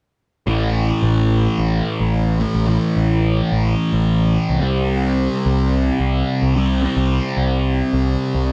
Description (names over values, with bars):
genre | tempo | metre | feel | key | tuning
rock | 109 BPM | 4/4 | straight | A minor | A4 = 442 Hz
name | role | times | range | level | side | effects
thick fuzz guitar | riff | 0.5-8.5 s | A2 to C4 | -21 LUFS | equal | distortion, phaser
growling picked electric bass | bass | 0.5-8.5 s | A1 to C2 | -21 LUFS | equal | overdrive
room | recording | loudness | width
light reverb | dry, close 1970s-style studio recording | -18 LUFS | mono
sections
0.5-8.5 A section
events
none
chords
0.5 A5; 4.6 C5